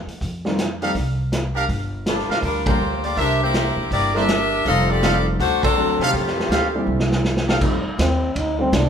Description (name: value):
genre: jazz, big band swing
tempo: 162 BPM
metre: 4/4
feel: swing 63% on 8ths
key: F mixolydian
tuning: A4 = 440 Hz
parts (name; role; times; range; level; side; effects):
- upright bass; bass; 0.0-8.9 s; F1 to C3; -24 LUFS; equal; none
- vintage drum kit; drums; 0.1-8.8 s; crash cymbal, hi-hat, kick drum, ride cymbal, snare drum; -24 LUFS; equal; none
- clear upright piano; accompaniment; 0.4-8.9 s; Bb2 to F#4; -26 LUFS; equal; none
- clear trumpet section; stabs; 0.8-7.6 s; D4 to F5; -25 LUFS; right 2 dB; none
- bright saxophone section; melody; 2.1-7.1 s; Eb3 to F5; -20 LUFS; left 2 dB; none
- warm saxophone section; sustained chords; 7.6-7.8 s; Eb3 to F4; -31 LUFS; right 1 dB; none
- mellow trombone; melody; 8.0-8.9 s; C4 to Eb4; -21 LUFS; left 1 dB; none
room: moderate large studio reverb, RT60 1.1 s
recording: band playing live in one room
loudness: -18 LUFS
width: side -8 dB against mid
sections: 0.0-7.6 A section; 7.6-8.9 B section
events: band accent 2.6, 5.6; drum fill 6.9-7.6; trombone solo 7.6-8.9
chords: 0.2 F9; 1.7 Gm7; 3.2 C9; 4.7 F9; 5.4 D7; 6.1 F9; 6.9 C9; 7.6 F9